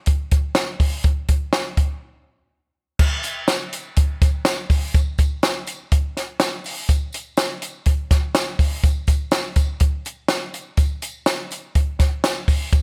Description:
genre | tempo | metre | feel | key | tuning
indie pop | 123 BPM | 4/4 | straight | none | none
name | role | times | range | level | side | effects
compact cocktail drum kit | drums | 0.1-12.8 s | crash cymbal, hi-hat, kick drum, snare drum | -20 LUFS | equal | none
tambourine | percussion | 3.0-12.8 s | none | -40 LUFS | equal | none
room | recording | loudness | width
little or no reverb | none | -21 LUFS | mono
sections
0.0-3.0 A section; 3.0-12.8 B section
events
break 2.0-3.0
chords
none

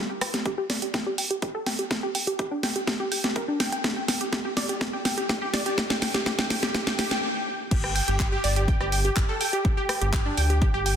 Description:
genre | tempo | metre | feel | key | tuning
progressive house | 124 BPM | 4/4 | straight | unclear | A4 = 440 Hz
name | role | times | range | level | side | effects
wide unison pluck | arpeggios | 0.0-11.0 s | D4 to G5 | -28 LUFS | equal | vintage 12-bit sampler grit, sidechain pumping, tape echo
house drum kit | drums | 0.2-11.0 s | crash cymbal, handclaps, hi-hat, rim click, snare drum | -27 LUFS | equal | sidechain pumping on hats, sidechain pumping on cymbals
electronic kick drum | drums | 0.5-10.7 s | none | -27 LUFS | equal | high-pass filter on kick, high-pass filter on room
round analog bass | bass | 7.7-11.0 s | G1 to D2 | -26 LUFS | equal | sidechain pumping
room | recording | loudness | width
moderate lush hall reverb, RT60 1.9 s | dense, heavily limited modern master | -23 LUFS | side -8 dB against mid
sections
0.0-7.7 A section; 7.7-11.0 B section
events
build-up 0.0-7.7; drum fill 0.0-7.2; filter sweep on synth pluck 0.0-7.7; stop 7.2-7.7; drop 7.7-11.0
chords
0.0 N.C.; 7.7 G5

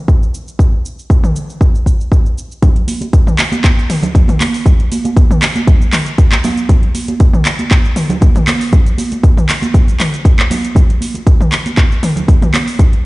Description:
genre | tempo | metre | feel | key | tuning
house | 118 BPM | 4/4 | swing 54% on 16ths | none | none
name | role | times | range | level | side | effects
electronic kick drum | drums | 0.1-12.9 s | none | -9 LUFS | equal | small room ambience
house drum kit | drums | 0.1-13.0 s | cabasa, handclaps, hi-hat, toms | -17 LUFS | equal | small room ambience
congas | percussion | 2.6-12.9 s | none | -19 LUFS | right 2 dB | none
room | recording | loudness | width
digital ambience | played on a big sound system in a bare room, stone room reverb, nothing above 10.7 kHz | -10 LUFS | side -21 dB against mid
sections
0.0-2.6 A section; 2.6-13.1 B section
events
drop 2.6-13.1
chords
none

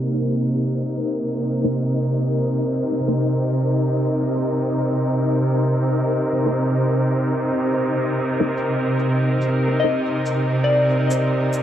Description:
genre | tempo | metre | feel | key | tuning
ambient dub | 71 BPM | 4/4 | swing 60% on 16ths | C minor | A4 = 440 Hz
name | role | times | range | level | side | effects
muted studio string section | sustained chords | 0.0-11.6 s | C3 to Bb4 | -19 LUFS | right 1 dB | none
soft synth bell | arpeggios | 0.0-11.6 s | C5 to Eb5 | -24 LUFS | left 3 dB | chorus, dub echo
wind-like tuned noise texture | texture | 0.0-11.6 s | Eb4 to Eb5 | -27 LUFS | left 4 dB | built-in reverb
shaker | drums | 0.1-11.6 s | none | -37 LUFS | equal | none
filtered dub chord stab | stabs | 1.6-10.0 s | Bb3 to C5 | -29 LUFS | equal | none
room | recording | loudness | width
moderate spring reverb, RT60 2.5 s | low-pass filter | -18 LUFS | side -10 dB against mid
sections
0.0-11.6 A section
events
filter sweep 0.0-11.6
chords
0.0 Cm7

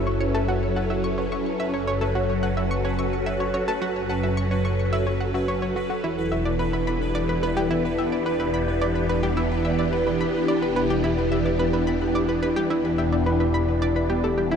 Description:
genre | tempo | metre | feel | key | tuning
ambient, sequencer-driven space music | 108 BPM | 4/4 | straight | E dorian | A4 = 440 Hz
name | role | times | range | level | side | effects
phased string machine | sustained chords | 0.0-14.6 s | E3 to A4 | -25 LUFS | equal | ensemble chorus, phaser
analog pluck | riff | 0.0-14.6 s | E4 to C#6 | -29 LUFS | equal | chorus, ping-pong delay
fat analog bass | bass | 0.0-14.6 s | E1 to F#1 | -28 LUFS | equal | none
pulsing gated texture | texture | 0.0-14.6 s | B4 | -34 LUFS | right 1 dB | chorus, built-in reverb
vibraphone with soft mallets | arpeggios | 6.2-14.6 s | B3 to G4 | -27 LUFS | left 1 dB | auto-pan, ping-pong delay
room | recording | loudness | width
wet huge ambient reverb, RT60 7.6 s | none | -21 LUFS | side -7 dB against mid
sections
0.0-14.6 A section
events
none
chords
0.0 F#m7; 6.0 Em7

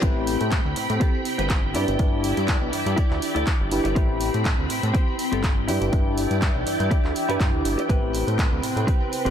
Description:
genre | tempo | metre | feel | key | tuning
filtered disco house | 122 BPM | 4/4 | swing 55% on 16ths | A minor | A4 = 435 Hz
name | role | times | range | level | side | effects
overdriven reed electric piano | accompaniment | 0.0-9.3 s | C4 to B5 | -28 LUFS | equal | phaser, sidechain pumping, low-pass filter
string machine, full ensemble | sustained chords | 0.0-9.3 s | C4 to B5 | -28 LUFS | equal | phaser, ensemble chorus, vintage 12-bit sampler grit, sidechain pumping, low-pass filter
direct-recorded clean electric guitar | riff | 0.0-9.3 s | C4 to D5 | -31 LUFS | left 1 dB | lush chorus, sidechain pumping, low-pass filter
fat analog bass | bass | 0.0-9.3 s | G1 to A2 | -26 LUFS | equal | tube saturation, sidechain pumping, low-pass filter
electronic kick drum | drums | 0.0-9.0 s | none | -22 LUFS | equal | overdrive
punchy analog drum machine | drums | 0.0-9.3 s | handclaps, hi-hat | -31 LUFS | equal | sidechain pumping on hats
tambourine | percussion | 0.0-9.3 s | none | -48 LUFS | equal | none
room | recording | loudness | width
light reverb | none | -20 LUFS | side -9 dB against mid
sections
0.0-9.3 A section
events
none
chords
0.0 Am9; 1.8 Em7/G; 4.0 Am9; 5.7 Em7/G; 7.9 Am9

